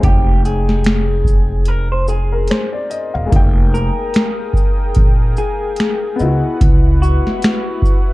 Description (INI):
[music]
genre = lo-fi hip hop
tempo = 73 BPM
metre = 4/4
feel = swing 57% on 16ths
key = unclear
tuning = A4 = 443 Hz
[part]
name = electric guitar through a small old amp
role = melody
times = 0.0-8.1 s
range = Gb4 to C5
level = -23 LUFS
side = left 2 dB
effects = low-pass filter, tape echo
[part]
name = warm upright piano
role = accompaniment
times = 0.0-8.1 s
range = Ab3 to G5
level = -24 LUFS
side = left 3 dB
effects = low-pass filter
[part]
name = upright bass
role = bass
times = 0.0-7.2 s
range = E1 to Db2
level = -16 LUFS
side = equal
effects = none
[part]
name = booming analog drum machine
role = drums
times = 0.0-8.1 s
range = finger snaps, hi-hat, kick drum, shaker, snare drum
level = -15 LUFS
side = equal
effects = none
[part]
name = warm analog pad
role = sustained chords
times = 3.3-8.1 s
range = Fb4 to Eb6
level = -28 LUFS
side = equal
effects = chorus, low-pass filter
[sound]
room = digital ambience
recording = dark, warm production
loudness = -13 LUFS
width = side -19 dB against mid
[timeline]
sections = 0.0-3.3 A section; 3.3-8.1 B section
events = break 0.0-3.3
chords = 0.0 Fm7; 3.3 Fm11; 6.2 Dbm11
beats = | 0.03 0.85 1.67 2.50 | 3.32 4.14 4.96 5.78 | 6.61 7.43